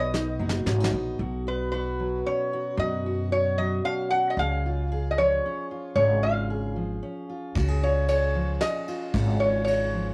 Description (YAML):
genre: acoustic folk duo or small band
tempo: 113 BPM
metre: 3/4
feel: straight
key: unclear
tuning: A4 = 444 Hz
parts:
  - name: lap resonator guitar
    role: melody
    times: 0.0-10.1 s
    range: B4 to F#5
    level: -28 LUFS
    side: equal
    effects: none
  - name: fingerpicked steel-string acoustic guitar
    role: accompaniment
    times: 0.0-10.1 s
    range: B2 to G#4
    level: -34 LUFS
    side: equal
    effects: cassette tape
  - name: upright bass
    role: bass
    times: 0.0-10.1 s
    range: F#1 to F#2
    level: -30 LUFS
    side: equal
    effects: none
  - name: soft brush drum kit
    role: drums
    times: 0.1-1.0, 7.6-9.8 s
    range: kick drum, ride cymbal, snare drum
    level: -35 LUFS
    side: equal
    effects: none
room: moderate studio reverb, RT60 0.6 s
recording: home recording on cassette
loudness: -26 LUFS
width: mono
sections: 0.0-1.2 A section; 1.2-10.1 B section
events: resonator guitar played with a steel bar solo 0.0-1.2; drum fill 0.1-1.2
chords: 0.0 Bmaj7; 1.2 Bsus2; 4.4 C#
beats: 0.13 0.66 | 1.19 1.72 2.25 | 2.78 3.31 3.84 | 4.37 4.90 5.43 | 5.96 6.49 7.02 | 7.55 8.08 8.61 | 9.14 9.67